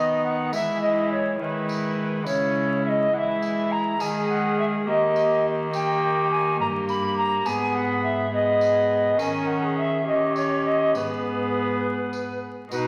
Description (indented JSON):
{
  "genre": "classical, renaissance-style consort dance",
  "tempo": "69 BPM (dotted quarters)",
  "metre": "6/8",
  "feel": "straight",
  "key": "G# minor",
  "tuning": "A4 = 440 Hz",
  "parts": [
    { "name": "alto recorder", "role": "melody", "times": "0.0-12.9 s", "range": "B4 to B5", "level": "-26 LUFS", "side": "equal", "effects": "none" },
    { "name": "dark viola", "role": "second line", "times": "0.0-12.9 s", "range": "D#4 to A#4", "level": "-31 LUFS", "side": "equal", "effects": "none" },
    { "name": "rich viola", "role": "accompaniment", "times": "0.0-12.9 s", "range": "G#3 to D#4", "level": "-31 LUFS", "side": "equal", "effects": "none" },
    { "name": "rich cello", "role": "bass", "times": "0.0-12.9 s", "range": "G2 to E3", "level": "-33 LUFS", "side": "equal", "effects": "none" },
    { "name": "tambourine", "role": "percussion", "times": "0.5-12.9 s", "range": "none", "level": "-46 LUFS", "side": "equal", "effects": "none" }
  ],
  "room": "wet recital hall reverb, RT60 1.5 s",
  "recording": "vinyl crackle",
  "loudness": "-24 LUFS",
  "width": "mono",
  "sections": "0.0-12.7 A section",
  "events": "none",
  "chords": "0.0 B; 0.5 E; 2.3 C#m; 4.0 D#sus4; 4.9 D#; 7.5 G#m; 9.2 D#7sus4; 10.9 G#m"
}